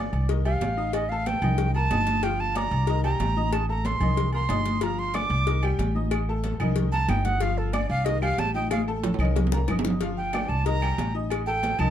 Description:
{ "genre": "latin, salsa", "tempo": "185 BPM", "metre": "4/4", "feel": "straight", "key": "unclear", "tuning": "A4 = 440 Hz", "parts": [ { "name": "bright upright piano", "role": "accompaniment", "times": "0.0-11.9 s", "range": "Eb3 to Eb6", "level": "-32 LUFS", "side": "left 4 dB", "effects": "none" }, { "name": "upright bass", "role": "bass", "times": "0.0-11.9 s", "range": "G1 to C2", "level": "-26 LUFS", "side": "equal", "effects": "none" }, { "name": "agogo bells and timbales", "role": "percussion", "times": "0.1-11.9 s", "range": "none", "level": "-35 LUFS", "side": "right 4 dB", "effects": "none" }, { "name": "congas", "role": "percussion", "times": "0.1-11.9 s", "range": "none", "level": "-32 LUFS", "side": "equal", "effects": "none" }, { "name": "cowbell and bongos", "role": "percussion", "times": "0.3-11.8 s", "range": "none", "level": "-34 LUFS", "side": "left 10 dB", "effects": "none" }, { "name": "breathy bright jazz flute", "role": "melody", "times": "0.5-11.9 s", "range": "A4 to D6", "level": "-28 LUFS", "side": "right 3 dB", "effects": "none" }, { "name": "claves", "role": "percussion", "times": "5.1-11.9 s", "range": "none", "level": "-39 LUFS", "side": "right 3 dB", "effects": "none" } ], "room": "light reverb", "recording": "dark, warm production", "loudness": "-22 LUFS", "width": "side -10 dB against mid", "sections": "0.0-11.9 A section", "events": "flute solo 0.0-11.9; drum fill 8.7-10.0", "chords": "0.3 Cm; 0.9 Am7b5; 1.6 Cm7; 2.2 Gm7; 2.9 Cm7; 3.5 Adim; 4.2 Cm7; 4.8 G5; 5.5 Cm; 6.1 Adim; 6.8 Cm7; 7.4 G5; 8.1 Cm; 8.7 Adim; 9.4 Cm7; 10.0 G5; 10.7 Cm7; 11.3 Am7b5" }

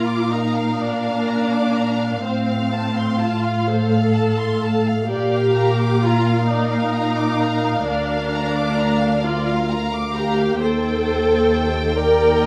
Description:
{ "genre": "classical, slow romantic movement for string orchestra", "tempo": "43 BPM (dotted quarters)", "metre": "6/8", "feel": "rubato", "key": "Bb major", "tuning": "A4 = 440 Hz", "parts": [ { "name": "warm studio violin section", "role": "melody", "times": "0.0-12.5 s", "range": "F5 to G5", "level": "-31 LUFS", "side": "equal", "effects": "none" }, { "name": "clear studio violin section", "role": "second line", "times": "0.0-12.5 s", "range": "Bb4 to D6", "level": "-29 LUFS", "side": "equal", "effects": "none" }, { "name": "warm studio viola section", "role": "accompaniment", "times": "0.0-12.5 s", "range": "C4 to Bb4", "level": "-24 LUFS", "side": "equal", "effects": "none" }, { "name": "dark studio cello section", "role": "bass", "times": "0.0-12.5 s", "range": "D2 to Bb2", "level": "-23 LUFS", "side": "equal", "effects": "none" } ], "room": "light reverb", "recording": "none", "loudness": "-19 LUFS", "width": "mono", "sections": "0.0-12.5 A section", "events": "none", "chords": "0.0 Bb; 2.2 F/A; 5.1 Bb; 7.9 Bb/D; 10.6 Cm7/Eb" }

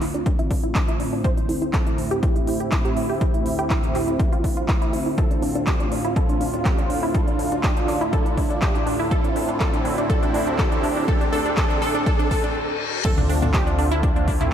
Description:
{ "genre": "progressive house", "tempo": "122 BPM", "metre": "4/4", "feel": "straight", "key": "D minor", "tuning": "A4 = 441 Hz", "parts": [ { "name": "filtered supersaw swell", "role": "sustained chords", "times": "0.0-14.5 s", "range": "D2 to F4", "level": "-26 LUFS", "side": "right 1 dB", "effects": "sidechain pumping, low-pass filter" }, { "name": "wide unison pluck", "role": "arpeggios", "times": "0.0-14.5 s", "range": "D4 to C5", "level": "-26 LUFS", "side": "equal", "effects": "sidechain pumping, ping-pong delay" }, { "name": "big-room dance drum kit", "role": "drums", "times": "0.0-14.5 s", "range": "crash cymbal, handclaps, hi-hat", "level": "-32 LUFS", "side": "equal", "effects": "overdrive, sidechain pumping on hats, sidechain pumping on cymbals" }, { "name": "riser, reverse cymbal and impact", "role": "sound effects", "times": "4.5-14.5 s", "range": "none", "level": "-33 LUFS", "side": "left 1 dB", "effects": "none" }, { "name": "electronic kick drum", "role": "drums", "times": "0.3-14.4 s", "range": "none", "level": "-22 LUFS", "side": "equal", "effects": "overdrive" }, { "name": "round analog bass", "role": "bass", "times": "13.0-14.5 s", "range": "D2", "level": "-23 LUFS", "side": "equal", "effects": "sidechain pumping" }, { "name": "backwards swelling texture", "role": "texture", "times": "13.8-14.5 s", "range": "A5", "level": "-44 LUFS", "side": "equal", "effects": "none" }, { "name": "electronic toms and congas", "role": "percussion", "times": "13.2-14.5 s", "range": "none", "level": "-29 LUFS", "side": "left 2 dB", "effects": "none" } ], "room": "moderate lush hall reverb, RT60 2.3 s", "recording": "dreamy mix soaked in reverb", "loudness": "-19 LUFS", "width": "side -9 dB against mid", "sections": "0.0-13.0 A section; 13.0-14.5 B section", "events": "build-up 0.0-13.0; filter sweep on synth pluck 0.0-13.0; filter sweep on supersaw synth 0.0-13.0; riser 4.5-12.6; reverse cymbal 12.1-13.0; stop 12.6-13.0; drop 13.0-14.5; impact 13.0-14.5", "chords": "0.0 Dm7; 1.2 Am/D; 13.0 Dm7" }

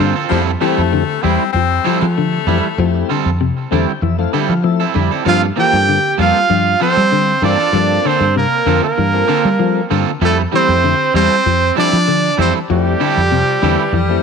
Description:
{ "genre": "afrobeat", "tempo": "97 BPM", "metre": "4/4", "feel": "straight", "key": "unclear", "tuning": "A4 = 440 Hz", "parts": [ { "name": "brilliant trumpet", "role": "melody", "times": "0.0-0.1, 5.3-14.2 s", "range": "G4 to G5", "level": "-16 LUFS", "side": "equal", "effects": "none" }, { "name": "edgy alto saxophone", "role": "second line", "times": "0.0-0.1, 5.3-14.2 s", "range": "G3 to G4", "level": "-20 LUFS", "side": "right 13 dB", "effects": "none" }, { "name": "electric guitar at the edge of break-up", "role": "arpeggios", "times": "0.0-14.2 s", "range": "C3 to G3", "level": "-20 LUFS", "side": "left 11 dB", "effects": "none" }, { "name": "electric guitar at the edge of break-up", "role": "stabs", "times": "0.0-13.8 s", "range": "G3 to A4", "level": "-21 LUFS", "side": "right 13 dB", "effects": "tape echo" }, { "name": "fingered electric bass", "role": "bass", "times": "0.0-14.2 s", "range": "E2 to G3", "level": "-17 LUFS", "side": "equal", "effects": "none" }, { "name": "clear baritone saxophone", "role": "second line", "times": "0.3-3.2, 13.3-14.2 s", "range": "E3 to C4", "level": "-21 LUFS", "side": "left 12 dB", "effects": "none" }, { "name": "mellow tonewheel organ", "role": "accompaniment", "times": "0.3-14.2 s", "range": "F3 to A5", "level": "-23 LUFS", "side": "left 14 dB", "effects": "slow rotary speaker" } ], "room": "light reverb, small room ambience", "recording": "1960s-style stereo with parts hard left and right", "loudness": "-12 LUFS", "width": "side -6 dB against mid", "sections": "0.0-14.2 A section", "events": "tonewheel organ fill 3.4-5.3", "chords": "0.3 Fmaj9; 5.3 Gm11; 10.2 Fmaj9" }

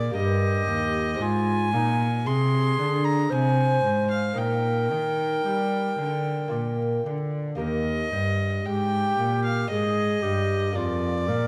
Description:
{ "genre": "classical, baroque-style sonata movement with continuo", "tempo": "57 BPM", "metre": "3/4", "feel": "straight", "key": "Eb major", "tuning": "A4 = 442 Hz", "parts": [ { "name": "warm violin", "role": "melody", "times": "0.0-11.5 s", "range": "D5 to C6", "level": "-31 LUFS", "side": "equal", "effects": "none" }, { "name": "lute", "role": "accompaniment", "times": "0.0-11.5 s", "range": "Eb2 to Eb5", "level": "-35 LUFS", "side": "equal", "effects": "none" }, { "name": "warm cello", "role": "bass", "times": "0.0-11.5 s", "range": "Eb2 to G3", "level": "-28 LUFS", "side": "equal", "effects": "none" }, { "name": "bright baroque flute", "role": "second line", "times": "0.1-11.5 s", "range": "Eb4 to C5", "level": "-30 LUFS", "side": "equal", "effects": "none" } ], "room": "moderate recital hall reverb, RT60 1.9 s", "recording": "vinyl crackle", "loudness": "-25 LUFS", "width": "mono", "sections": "0.0-11.5 A section", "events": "none", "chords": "0.2 Eb/G; 1.2 Ab; 4.4 Eb/Bb; 6.5 Bb; 7.6 Eb; 10.8 Bb7/F" }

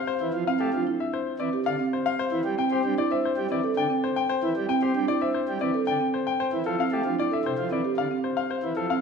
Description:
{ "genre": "classical, minimalist pattern music", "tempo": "114 BPM", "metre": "4/4", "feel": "straight", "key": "unclear", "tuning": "A4 = 441 Hz", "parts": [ { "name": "bright baby grand piano", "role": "melody", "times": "0.0-9.0 s", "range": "G4 to G5", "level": "-28 LUFS", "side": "left 7 dB", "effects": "none" }, { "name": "pipe organ, principal chorus", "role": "accompaniment", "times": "0.2-8.9 s", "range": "C3 to C4", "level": "-32 LUFS", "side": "right 1 dB", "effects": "none" }, { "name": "marimba with soft mallets", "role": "arpeggios", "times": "0.2-9.0 s", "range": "C4 to C5", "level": "-27 LUFS", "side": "right 4 dB", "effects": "none" } ], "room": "moderate scoring stage reverb, RT60 1.6 s", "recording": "minimal, uncompressed stereo recording", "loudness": "-23 LUFS", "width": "side -6 dB against mid", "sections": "0.0-9.0 A section", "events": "none", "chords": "0.0 F6; 2.2 Am7 (rootless); 6.4 G9sus4 (rootless)" }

